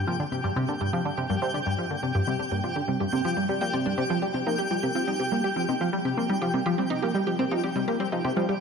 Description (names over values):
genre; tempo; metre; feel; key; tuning
ambient, sequencer-driven space music; 123 BPM; 4/4; straight; G minor; A4 = 440 Hz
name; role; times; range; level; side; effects
tight sequenced synth; riff; 0.0-8.5 s; G2 to Bb3; -26 LUFS; equal; chorus, phaser, analog delay
twinkling granular texture; texture; 0.0-8.6 s; G4 to G5; -31 LUFS; left 1 dB; built-in reverb
wide unison pluck; arpeggios; 0.1-8.6 s; G3 to D5; -31 LUFS; right 3 dB; auto-pan, vintage 12-bit sampler grit, analog delay
room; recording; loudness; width
wet plate reverb, RT60 3.8 s; none; -24 LUFS; side -6 dB against mid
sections
0.0-8.6 A section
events
fade-in on synth arpeggio sound 0.0-8.6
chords
0.0 Gm; 4.0 Cm